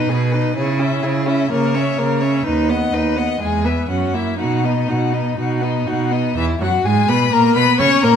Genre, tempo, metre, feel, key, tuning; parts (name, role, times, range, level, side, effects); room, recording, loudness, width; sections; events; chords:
quick classical-period movement for string quartet; 124 BPM; 4/4; uneven beats; B major; A4 = 440 Hz
rich violin; melody; 0.0-8.2 s; B4 to C#6; -22 LUFS; left 9 dB
rich violin; second line; 0.0-8.2 s; D#4 to D#5; -22 LUFS; left 5 dB
rich viola; accompaniment; 0.0-8.2 s; E3 to E4; -20 LUFS; right 2 dB
clear cello; bass; 0.0-8.2 s; D#2 to C#3; -20 LUFS; right 3 dB
wet recital hall reverb, RT60 1.4 s; -15 LUFS; side -8 dB against mid
0.0-6.4 A section; 6.4-8.2 B section
0.0 G#m/B; 0.6 C#m; 1.5 A#dim/C#; 2.5 B/D#; 3.4 E; 3.9 F#7; 4.4 B; 6.4 E; 7.3 A#m